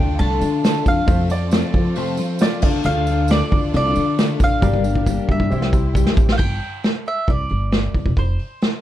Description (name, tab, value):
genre	folk rock and heartland rock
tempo	136 BPM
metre	4/4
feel	straight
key	unclear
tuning	A4 = 440 Hz
part	mandolin	melody	0.0-8.8 s	C5 to A5	-24 LUFS	right 2 dB	none
part	dark baby grand piano	accompaniment	0.0-6.4 s	F4 to E5	-34 LUFS	right 5 dB	none
part	picked steel-string acoustic guitar	accompaniment	0.0-6.4 s	F2 to G4	-23 LUFS	left 8 dB	none
part	clear studio string section	sustained chords	0.0-6.4 s	C4 to C5	-34 LUFS	right 2 dB	none
part	upright bass	bass	0.0-8.4 s	E1 to F3	-21 LUFS	equal	none
part	soft brush drum kit	drums	0.2-8.7 s	crash cymbal, hi-hat, kick drum, snare drum	-19 LUFS	equal	vintage 12-bit sampler grit
part	tambourine	percussion	0.2-6.3 s	none	-42 LUFS	right 10 dB	none
part	bright upright piano	second line	1.3-2.7 s	F4 to D5	-28 LUFS	right 3 dB	none
room	little or no reverb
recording	dark, warm production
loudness	-16 LUFS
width	side -12 dB against mid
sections	0.0-6.4 A section; 6.4-8.8 B section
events	drum fill 4.6-6.4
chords	0.0 Dm; 1.1 F; 2.6 Dm; 4.6 Gm; 5.5 C; 6.4 G5; 8.2 F5